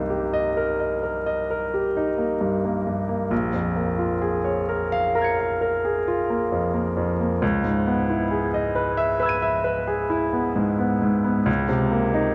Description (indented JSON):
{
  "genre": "classical, impressionist solo piano",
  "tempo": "44 BPM (dotted quarters)",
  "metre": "9/8",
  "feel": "rubato",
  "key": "unclear",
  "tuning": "A4 = 438 Hz",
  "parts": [
    { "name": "clear baby grand piano", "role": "solo", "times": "0.0-12.3 s", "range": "Bb1 to Eb7", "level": "-23 LUFS", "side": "equal", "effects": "none" }
  ],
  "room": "wet concert hall reverb, RT60 2.6 s",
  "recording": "none",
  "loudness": "-23 LUFS",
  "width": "mono",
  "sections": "0.0-12.3 A section",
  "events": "none",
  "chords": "0.0 Cm7; 3.3 Bbm7; 7.4 Dbm9; 11.5 Cm7/Db"
}